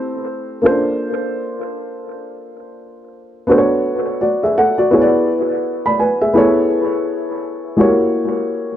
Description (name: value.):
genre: hip hop.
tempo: 84 BPM.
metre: 4/4.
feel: swing 61% on 16ths.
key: unclear.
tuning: A4 = 439 Hz.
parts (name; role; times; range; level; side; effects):
dark upright piano; solo; 0.0-8.8 s; G#3 to B5; -14 LUFS; equal; analog delay.
room: moderate spring reverb, RT60 2.0 s, small room ambience.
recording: echo-heavy mix.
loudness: -14 LUFS.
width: side -11 dB against mid.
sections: 0.0-8.8 A section.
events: none.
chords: 0.0 Am7; 0.6 Bbmaj9; 3.5 Bm7; 4.9 E9; 6.4 Amaj9; 7.8 F#7b9.